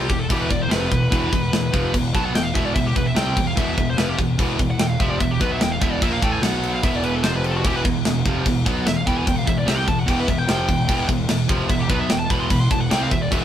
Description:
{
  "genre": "heavy metal",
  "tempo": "148 BPM",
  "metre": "4/4",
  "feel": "straight",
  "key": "E phrygian",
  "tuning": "A4 = 439 Hz",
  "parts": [
    { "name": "high-gain lead guitar", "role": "melody", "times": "0.0-13.4 s", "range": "F4 to C6", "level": "-26 LUFS", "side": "equal", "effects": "distortion" },
    { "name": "distorted electric guitar", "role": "riff", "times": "0.0-13.4 s", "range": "E2 to C4", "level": "-22 LUFS", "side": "equal", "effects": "overdrive" },
    { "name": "fuzz picked electric bass", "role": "bass", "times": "0.0-13.4 s", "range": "E1 to C2", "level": "-26 LUFS", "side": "equal", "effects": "overdrive" },
    { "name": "tight metal drum kit", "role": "drums", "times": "0.1-13.4 s", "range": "crash cymbal, kick drum, snare drum", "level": "-22 LUFS", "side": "equal", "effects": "none" }
  ],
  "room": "light reverb",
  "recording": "band playing live in one room",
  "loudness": "-18 LUFS",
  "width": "side -10 dB against mid",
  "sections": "0.0-13.4 A section",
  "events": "lead electric guitar solo 0.0-13.4",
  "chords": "0.0 E5; 6.4 B5; 6.8 E5; 7.2 F5; 7.6 Em"
}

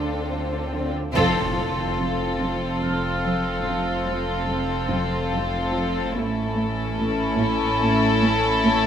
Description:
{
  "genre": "cinematic",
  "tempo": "72 BPM",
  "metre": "3/4",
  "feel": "straight",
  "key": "unclear",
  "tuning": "A4 = 442 Hz",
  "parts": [
    { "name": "warm studio violin section", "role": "melody", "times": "0.0-8.9 s", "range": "A4", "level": "-27 LUFS", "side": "left 4 dB", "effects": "none" },
    { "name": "clear studio violin section", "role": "second line", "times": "0.0-8.9 s", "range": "E4 to F4", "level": "-28 LUFS", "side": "left 2 dB", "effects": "none" },
    { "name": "warm studio viola section", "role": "accompaniment", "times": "0.0-8.9 s", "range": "C4 to D4", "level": "-28 LUFS", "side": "equal", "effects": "none" },
    { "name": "dark studio cello section", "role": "riff", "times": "0.0-8.9 s", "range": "F2 to D4", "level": "-28 LUFS", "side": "right 2 dB", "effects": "none" },
    { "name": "warm studio cello section", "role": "bass", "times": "0.0-8.9 s", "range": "F2 to D3", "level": "-30 LUFS", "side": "right 2 dB", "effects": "none" },
    { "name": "warm studio double bass section", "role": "bass", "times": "0.0-8.9 s", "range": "F1 to D2", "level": "-31 LUFS", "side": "right 3 dB", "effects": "none" },
    { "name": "pure sine sub bass", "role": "drone", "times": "0.0-8.9 s", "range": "F1 to D2", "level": "-36 LUFS", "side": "equal", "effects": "none" },
    { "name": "swell and impact", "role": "sound effects", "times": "0.0-3.7 s", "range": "none", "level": "-33 LUFS", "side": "left 1 dB", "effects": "none" },
    { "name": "vibraphone with hard mallets", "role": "texture", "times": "0.0-6.2 s", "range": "C6 to F6", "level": "-34 LUFS", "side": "right 1 dB", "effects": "none" }
  ],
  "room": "moderate scoring stage reverb, RT60 2.2 s",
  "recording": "none",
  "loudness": "-21 LUFS",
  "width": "side -9 dB against mid",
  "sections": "0.0-1.2 A section; 1.2-8.9 B section",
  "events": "swell 0.0-1.2; band accent 1.2-2.0; impact 1.2-3.7",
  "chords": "0.0 Dm; 1.2 F; 6.2 A"
}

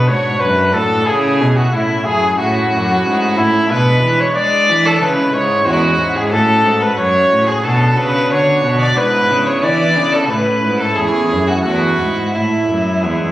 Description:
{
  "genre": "classical, baroque-style sonata movement with continuo",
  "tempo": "91 BPM",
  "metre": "4/4",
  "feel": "straight",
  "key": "A major",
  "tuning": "A4 = 442 Hz",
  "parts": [
    { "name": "warm trumpet", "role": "melody", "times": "0.0-13.3 s", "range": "E4 to D5", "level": "-16 LUFS", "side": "left 2 dB", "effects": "none" },
    { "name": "rich violin", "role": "second line", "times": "0.0-13.3 s", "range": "E4 to D5", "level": "-19 LUFS", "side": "right 2 dB", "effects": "none" },
    { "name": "chamber organ, cornet", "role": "accompaniment", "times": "0.0-13.3 s", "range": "E2 to F#4", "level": "-20 LUFS", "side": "equal", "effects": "none" },
    { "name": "clear cello", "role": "bass", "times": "0.0-13.3 s", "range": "E2 to G#3", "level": "-17 LUFS", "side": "equal", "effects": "none" }
  ],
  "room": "moderate recital hall reverb, RT60 1.6 s",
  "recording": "recorded on a phone in the room, club reverb",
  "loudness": "-12 LUFS",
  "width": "side -15 dB against mid",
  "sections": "0.0-13.3 A section",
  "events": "none",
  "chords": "0.0 Bm; 1.1 A; 3.7 G#dim/B; 5.0 C#m; 6.3 F#m; 7.6 Bm; 9.0 E7/G#; 10.3 A"
}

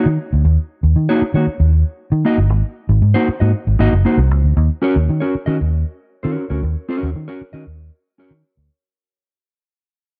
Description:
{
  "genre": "funk",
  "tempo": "116 BPM",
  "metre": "4/4",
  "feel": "straight",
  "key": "Eb dorian",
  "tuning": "A4 = 440 Hz",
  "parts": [
    { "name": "mellow electric guitar", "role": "accompaniment", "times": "0.0-8.3 s", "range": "Bb3 to Eb5", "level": "-21 LUFS", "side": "equal", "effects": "spring reverb" },
    { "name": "vintage muted fingered electric bass", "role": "bass", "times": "0.1-8.7 s", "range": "Gb1 to Eb3", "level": "-16 LUFS", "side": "equal", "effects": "none" }
  ],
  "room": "little or no reverb",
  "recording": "dark, warm production",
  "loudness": "-17 LUFS",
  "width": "mono",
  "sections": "0.0-4.6 A section; 4.6-8.7 B section",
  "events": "fade-out 4.6-8.7",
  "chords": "0.0 Ebm; 2.5 Ab9; 4.6 Ebm7"
}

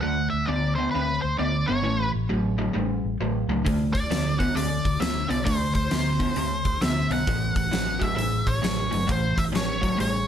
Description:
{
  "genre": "blues rock power trio and southern rock",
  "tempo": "133 BPM",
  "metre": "4/4",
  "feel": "swing 63% on 8ths",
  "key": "unclear",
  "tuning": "A4 = 440 Hz",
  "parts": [
    { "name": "octave-fuzz lead guitar", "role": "melody", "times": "0.0-10.3 s", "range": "B4 to F#5", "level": "-28 LUFS", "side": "equal", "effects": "wah, distortion, plate reverb" },
    { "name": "overdriven semi-hollow guitar", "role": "riff", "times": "0.0-10.3 s", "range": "A2 to C4", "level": "-26 LUFS", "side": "equal", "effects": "none" },
    { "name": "vintage muted fingered electric bass", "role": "bass", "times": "0.0-10.2 s", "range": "G1 to D2", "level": "-30 LUFS", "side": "equal", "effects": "none" },
    { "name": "huge arena drum kit", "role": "drums", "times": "3.7-10.1 s", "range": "hi-hat, kick drum, snare drum", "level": "-28 LUFS", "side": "equal", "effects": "none" }
  ],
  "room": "light reverb",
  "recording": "lossy compression artefacts",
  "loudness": "-22 LUFS",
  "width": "side -9 dB against mid",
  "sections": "0.0-10.3 A section",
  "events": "none",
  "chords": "0.0 D5; 1.8 A7(no3); 3.7 D5; 7.3 A7"
}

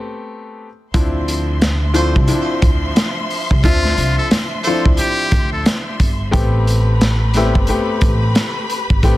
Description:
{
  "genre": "hip hop, boom-bap hip-hop",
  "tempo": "89 BPM",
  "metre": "4/4",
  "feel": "swing 62% on 16ths",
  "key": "unclear",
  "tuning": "A4 = 440 Hz",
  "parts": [
    { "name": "warm upright piano", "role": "accompaniment", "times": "0.0-9.2 s", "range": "F3 to E5", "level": "-21 LUFS", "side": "left 2 dB", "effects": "cassette tape" },
    { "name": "warm studio string section", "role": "sustained chords", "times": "0.9-9.2 s", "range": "F3 to C6", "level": "-26 LUFS", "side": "left 1 dB", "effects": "none" },
    { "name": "upright bass", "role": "bass", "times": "0.9-9.2 s", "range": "G1 to D2", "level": "-18 LUFS", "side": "equal", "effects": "none" },
    { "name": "crunchy breakbeat drum kit", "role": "drums", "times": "0.9-9.2 s", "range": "hi-hat, kick drum, snare drum", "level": "-16 LUFS", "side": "equal", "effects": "none" },
    { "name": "warm horn section", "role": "stabs", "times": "2.0-7.6 s", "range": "G3 to C5", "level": "-24 LUFS", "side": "equal", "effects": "digital delay" },
    { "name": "trumpet with metal mute", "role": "melody", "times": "3.6-5.6 s", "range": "F4 to A4", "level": "-21 LUFS", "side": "equal", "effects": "digital delay" }
  ],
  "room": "small room reverb",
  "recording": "dense, heavily limited modern master",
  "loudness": "-14 LUFS",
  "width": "side -16 dB against mid",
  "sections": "0.9-9.2 A section",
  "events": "stop 0.0-0.9",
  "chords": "0.0 Am9; 0.9 Dm9; 6.3 Am9"
}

